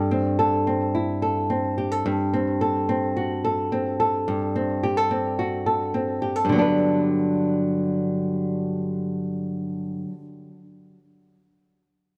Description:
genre	folktronica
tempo	108 BPM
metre	4/4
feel	straight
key	G major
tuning	A4 = 440 Hz
part	flamenco guitar	solo	0.0-10.2 s	G2 to B4	-24 LUFS	equal	digital delay
room	moderate echo chamber reverb, RT60 1.3 s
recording	dark, warm production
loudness	-24 LUFS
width	mono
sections	0.0-6.5 A section; 6.5-8.7 B section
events	none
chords	0.0 C6/G; 2.0 Gsus24; 6.5 Gmaj7

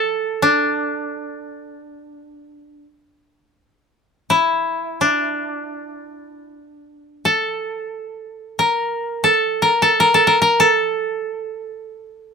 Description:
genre	japanese traditional, Japanese chamber music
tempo	free time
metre	none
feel	none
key	unclear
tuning	A4 = 440 Hz
part	koto	solo	0.0-12.3 s	D4 to Bb4	-17 LUFS	equal	none
room	light reverb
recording	close, detailed microphones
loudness	-16 LUFS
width	side -5 dB against mid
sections	0.0-6.1 A section; 6.1-12.3 A section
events	none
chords	none

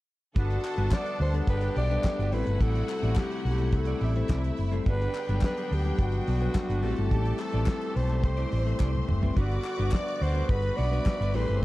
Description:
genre	disco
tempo	106 BPM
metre	4/4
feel	straight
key	G major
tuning	A4 = 440 Hz
part	clean electric guitar	accompaniment	0.3-11.6 s	G3 to D5	-42 LUFS	right 6 dB	analog chorus
part	accordion	sustained chords	0.3-11.6 s	C3 to G4	-40 LUFS	equal	light tremolo tuning
part	breathy alto saxophone	melody	0.4-11.6 s	F#4 to D5	-33 LUFS	right 1 dB	slapback echo
part	clear studio string section	second line	0.4-11.6 s	G3 to D6	-40 LUFS	left 1 dB	none
part	hollow-body short-scale fingered electric bass	bass	0.4-11.6 s	F#1 to D2	-27 LUFS	equal	none
part	damped 70s drum kit	drums	0.4-11.6 s	handclaps, hi-hat, kick drum, snare drum, toms	-26 LUFS	equal	none
part	group handclap	percussion	0.6-11.2 s	none	-46 LUFS	left 5 dB	none
part	bell-like tine electric piano	accompaniment	0.8-11.6 s	F#3 to C5	-34 LUFS	left 5 dB	none
room	small room reverb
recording	dark, warm production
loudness	-25 LUFS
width	side -17 dB against mid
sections	0.4-11.6 A section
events	drum fill 8.8-9.4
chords	0.4 Gmaj7; 2.3 Am7; 4.9 Gmaj7; 6.8 Am7; 9.4 Gmaj7

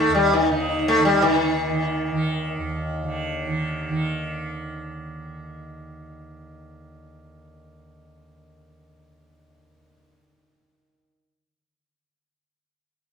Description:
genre	indian classical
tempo	169 BPM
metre	4/4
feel	straight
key	unclear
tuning	A4 = 442 Hz
part	sitar	melody	0.0-2.6 s	Eb3 to Eb4	-19 LUFS	left 1 dB	none
part	tanpura	drone	0.0-11.0 s	Eb2 to Eb3	-28 LUFS	right 2 dB	none
room	wet studio reverb, RT60 0.8 s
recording	band playing live in one room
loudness	-21 LUFS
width	side -6 dB against mid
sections	0.0-1.2 A section; 1.2-4.1 B section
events	none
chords	none

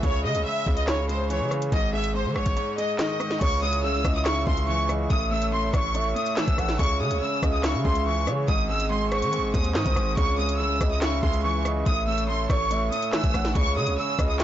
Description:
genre	hip hop, drill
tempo	142 BPM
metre	4/4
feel	half-time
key	C# harmonic minor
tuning	A4 = 444 Hz
part	clear studio violin section	melody	0.0-14.4 s	B#4 to E6	-28 LUFS	equal	digital delay
part	bright concert grand piano	accompaniment	0.0-14.4 s	G#2 to A3	-30 LUFS	equal	none
part	hard-hitting 808-style bass	bass	0.0-14.4 s	G#1 to D#3	-28 LUFS	equal	none
part	drill drum kit	drums	0.0-14.4 s	crash cymbal, handclaps, hi-hat, kick drum, rim click, snare drum	-26 LUFS	equal	soft clipping on snare
part	gliding portamento lead	second line	3.4-14.4 s	B#4 to F#5	-32 LUFS	right 5 dB	chorus, digital delay
part	dark analog pad	sustained chords	3.4-14.4 s	C#3 to E5	-35 LUFS	left 2 dB	chorus
room	little or no reverb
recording	blown-out, overdriven recording, overdrive, nothing above 7.6 kHz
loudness	-22 LUFS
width	side -11 dB against mid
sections	0.0-3.4 A section; 3.4-14.4 B section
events	kick muted 2.6-3.4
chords	0.0 C#m; 1.7 G#5; 3.4 C#m; 5.1 A; 6.8 C#m; 8.5 G#; 10.2 C#m; 11.9 A; 13.6 C#m

